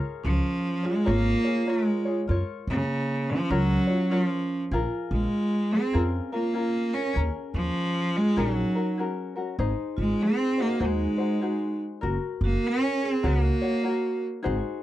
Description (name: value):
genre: Hawaiian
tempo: 99 BPM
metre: 4/4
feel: swing 63% on 8ths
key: unclear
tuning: A4 = 439 Hz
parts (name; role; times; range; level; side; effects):
- tenor ukulele; accompaniment; 0.0-14.8 s; Db4 to Db5; -32 LUFS; left 4 dB; none
- bright cello; melody; 0.2-14.2 s; Db3 to Db4; -26 LUFS; equal; none
- vibraphone with medium hard mallets; second line; 0.2-14.2 s; Bb3 to Bb4; -31 LUFS; right 5 dB; none
- upright bass; bass; 0.2-14.6 s; Gb1 to Gb2; -26 LUFS; equal; none
room: little or no reverb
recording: dry, close 1970s-style studio recording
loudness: -24 LUFS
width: side -14 dB against mid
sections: 0.0-14.8 A section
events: none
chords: 0.0 Db6; 2.3 Gbmaj7; 4.7 Bbm7; 7.2 Ebm11; 9.6 Ab7; 12.0 Gb